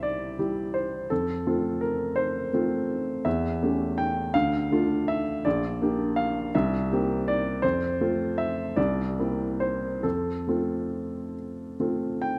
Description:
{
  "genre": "classical, romantic character piece for solo piano",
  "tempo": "45-57 BPM (dotted quarters)",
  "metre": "6/8",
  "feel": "rubato",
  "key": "F major",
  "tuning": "A4 = 440 Hz",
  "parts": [
    { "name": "warm baby grand piano", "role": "solo", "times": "0.0-12.4 s", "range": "Bb1 to G5", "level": "-27 LUFS", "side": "equal", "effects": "none" }
  ],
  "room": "moderate scoring stage reverb, RT60 1.7 s",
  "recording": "none",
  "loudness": "-27 LUFS",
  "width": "mono",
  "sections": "0.0-12.4 A section",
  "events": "none",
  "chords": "0.0 C; 1.1 F; 3.3 A7/E; 4.3 Dm; 5.5 Gm/Bb; 6.5 C7; 7.6 F; 8.8 C7; 10.0 F",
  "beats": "0.04 | 1.11 2.17 | 3.26 4.34 | 5.45 6.53 | 7.63 8.77 | 10.04 11.34"
}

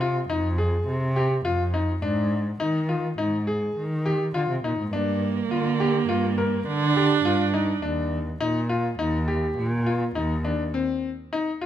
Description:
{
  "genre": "contemporary instrumental, chamber music in an uneven meter",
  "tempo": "103 BPM",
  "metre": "5/4",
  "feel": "straight",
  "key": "Eb major",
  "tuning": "A4 = 443 Hz",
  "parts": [
    { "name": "clear grand piano", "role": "arpeggios", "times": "0.0-11.7 s", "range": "C4 to Bb4", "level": "-26 LUFS", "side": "left 3 dB", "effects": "none" },
    { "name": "muted cello", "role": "bass", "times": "0.0-10.7 s", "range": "Eb2 to Eb3", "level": "-26 LUFS", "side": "equal", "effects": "none" },
    { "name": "warm viola", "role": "second line", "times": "4.9-7.8 s", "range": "Bb3 to D4", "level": "-24 LUFS", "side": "right 9 dB", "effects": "none" }
  ],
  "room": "moderate recital hall reverb, RT60 1.4 s",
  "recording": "none",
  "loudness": "-22 LUFS",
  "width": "side -11 dB against mid",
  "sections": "0.0-11.7 A section",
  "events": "none",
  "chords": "0.0 Fm7; 2.0 Ab5; 4.9 Gm7; 7.8 Ebmaj7(no3); 10.7 F7(no3) (rootless)",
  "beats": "0.30 0.88 1.45 | 2.03 2.61 3.19 3.77 4.35 | 4.93 5.51 6.09 6.67 7.25 | 7.83 8.41 9.00 9.58 10.16 | 10.74 11.32"
}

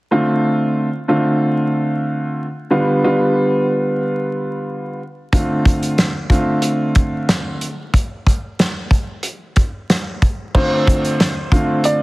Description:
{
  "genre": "hip hop, boom-bap hip-hop",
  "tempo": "92 BPM",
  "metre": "4/4",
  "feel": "swing 56% on 16ths",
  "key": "D dorian",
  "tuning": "A4 = 444 Hz",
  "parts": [
    { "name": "dark upright piano", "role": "accompaniment", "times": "0.1-12.0 s", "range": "D3 to F4", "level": "-17 LUFS", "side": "equal", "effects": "cassette tape, high-pass filter, low-pass filter" },
    { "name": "warm soul drum kit", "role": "drums", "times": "5.3-12.0 s", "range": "crash cymbal, hi-hat, kick drum, snare drum", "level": "-16 LUFS", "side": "equal", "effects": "none" },
    { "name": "dark upright piano", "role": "melody", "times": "10.5-12.0 s", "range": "C5 to D5", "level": "-20 LUFS", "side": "equal", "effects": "high-pass filter, low-pass filter" }
  ],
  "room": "light reverb, studio reverb",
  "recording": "heavily compressed radio sound, vinyl crackle",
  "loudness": "-15 LUFS",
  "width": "side -21 dB against mid",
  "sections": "0.1-10.5 A section; 10.5-12.0 B section",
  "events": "none",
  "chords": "0.1 Dm7; 2.7 G7; 5.3 Dm7; 7.9 N.C.; 10.5 Dm7",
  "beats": "| 0.11 0.76 1.41 2.07 | 2.72 3.37 4.02 4.67 | 5.33 5.98 6.63 7.28 | 7.94 8.59 9.24 9.89 | 10.54 11.20 11.85"
}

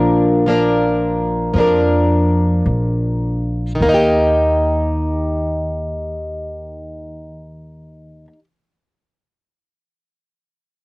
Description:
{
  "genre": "acoustic folk duo or small band",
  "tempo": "51-57 BPM",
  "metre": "4/4",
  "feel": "swing 60% on 8ths",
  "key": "Eb major",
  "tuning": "A4 = 442 Hz",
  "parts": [
    { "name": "fingerpicked plugged-in twelve-string acoustic guitar", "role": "accompaniment", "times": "0.0-8.4 s", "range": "Bb2 to Bb4", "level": "-16 LUFS", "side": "equal", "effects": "cassette tape" },
    { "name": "upright bass", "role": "bass", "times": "0.0-8.3 s", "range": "Bb1 to F2", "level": "-20 LUFS", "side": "equal", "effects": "none" }
  ],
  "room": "wet booth ambience, RT60 0.2 s",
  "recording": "home recording on cassette",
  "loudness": "-14 LUFS",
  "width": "side -25 dB against mid",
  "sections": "0.0-3.8 A section; 3.8-8.5 B section",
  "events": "slowing down 0.0-3.8",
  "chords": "0.0 Bb; 3.8 Eb",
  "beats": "0.46 1.54 2.65 | 3.81 4.98 6.16 7.34"
}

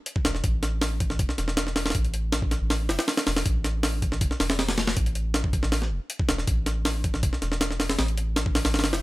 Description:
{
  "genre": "drum and bass, jungle",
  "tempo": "159 BPM",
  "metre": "4/4",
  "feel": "straight",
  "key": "unclear",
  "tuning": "A4 = 440 Hz",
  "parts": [
    { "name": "jungle sampler-style drum kit", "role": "drums", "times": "0.1-9.0 s", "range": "hi-hat, kick drum, snare drum", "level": "-24 LUFS", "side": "equal", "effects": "small room ambience" },
    { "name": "soft dub sub bass", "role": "bass", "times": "0.2-9.0 s", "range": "E1 to A1", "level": "-28 LUFS", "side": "equal", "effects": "none" }
  ],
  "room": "digital ambience",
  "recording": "none",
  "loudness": "-23 LUFS",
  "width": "side -19 dB against mid",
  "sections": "0.0-9.0 A section",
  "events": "none",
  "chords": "none",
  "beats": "0.06 | 0.44 0.82 1.19 1.57 | 1.95 2.33 2.70 3.08 | 3.46 3.83 4.21 4.59 | 4.97 5.34 5.72 6.10 | 6.48 6.85 7.23 7.61 | 7.99 8.36 8.74"
}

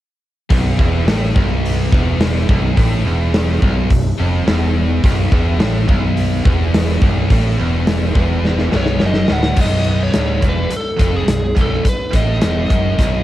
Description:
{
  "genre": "hard rock",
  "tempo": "106 BPM",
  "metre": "4/4",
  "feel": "straight",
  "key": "B mixolydian",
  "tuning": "A4 = 444 Hz",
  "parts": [
    { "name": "high-gain distorted guitar", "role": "riff", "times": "0.5-13.2 s", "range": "B1 to A2", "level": "-22 LUFS", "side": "right 7 dB", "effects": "distortion, cassette tape" },
    { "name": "scooped high-gain guitar", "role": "riff", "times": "0.5-13.2 s", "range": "B1 to A2", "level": "-23 LUFS", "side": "left 8 dB", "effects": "distortion, cassette tape" },
    { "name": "fingered electric bass", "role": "bass", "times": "0.5-13.2 s", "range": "B0 to A1", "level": "-18 LUFS", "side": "equal", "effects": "none" },
    { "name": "huge arena drum kit", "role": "drums", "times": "0.5-13.1 s", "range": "crash cymbal, hi-hat, kick drum, snare drum", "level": "-16 LUFS", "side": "equal", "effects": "cassette tape" },
    { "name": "biting lead guitar", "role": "melody", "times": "8.8-13.2 s", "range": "G#4 to F#5", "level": "-22 LUFS", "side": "equal", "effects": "overdrive, cassette tape" }
  ],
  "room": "studio ambience",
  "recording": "home recording on cassette",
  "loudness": "-13 LUFS",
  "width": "side -14 dB against mid",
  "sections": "0.5-9.6 A section; 9.6-13.2 B section",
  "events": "drum fill 8.4-9.6",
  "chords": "0.5 B5",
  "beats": "| 0.50 1.07 1.64 2.20 | 2.77 3.34 3.90 4.47 | 5.04 5.61 6.17 6.74 | 7.31 7.87 8.44 9.01 | 9.57 10.14 10.71 11.28 | 11.85 12.41 12.98"
}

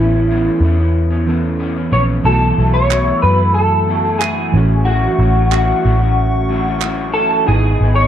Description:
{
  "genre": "indie pop, bedroom pop",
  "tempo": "92 BPM",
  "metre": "4/4",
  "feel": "straight",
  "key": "unclear",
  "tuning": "A4 = 442 Hz",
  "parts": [
    { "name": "electric guitar through a small old amp", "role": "melody", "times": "0.0-8.1 s", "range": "E4 to C#5", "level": "-17 LUFS", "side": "equal", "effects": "ensemble chorus, slapback echo" },
    { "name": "electric guitar through a small old amp", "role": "accompaniment", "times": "0.0-8.1 s", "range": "G#2 to E4", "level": "-23 LUFS", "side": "left 4 dB", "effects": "wide subtle chorus, vibrato effect" },
    { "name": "warbly lo-fi synth keys", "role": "accompaniment", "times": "0.0-8.1 s", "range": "E3 to A4", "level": "-21 LUFS", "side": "right 4 dB", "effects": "chorus" },
    { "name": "vintage muted picked electric bass", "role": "bass", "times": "0.0-8.1 s", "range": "G1 to F#2", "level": "-15 LUFS", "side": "equal", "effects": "none" },
    { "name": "hollow soft pad", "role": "sustained chords", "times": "2.2-8.1 s", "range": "A3 to E6", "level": "-26 LUFS", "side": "left 2 dB", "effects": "chorus" },
    { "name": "group handclap", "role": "percussion", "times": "2.9-7.0 s", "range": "none", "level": "-22 LUFS", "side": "right 13 dB", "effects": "none" }
  ],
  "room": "moderate studio reverb, RT60 0.6 s",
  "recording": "dark, warm production",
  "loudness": "-12 LUFS",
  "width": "side -10 dB against mid",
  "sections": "0.0-2.3 A section; 2.3-8.1 B section",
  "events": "none",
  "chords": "0.0 Aadd9; 2.3 B7sus4; 4.5 A6; 7.5 Emaj7",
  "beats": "0.29 0.94 1.60 | 2.25 2.91 3.56 4.22 | 4.87 5.52 6.18 6.83 | 7.49"
}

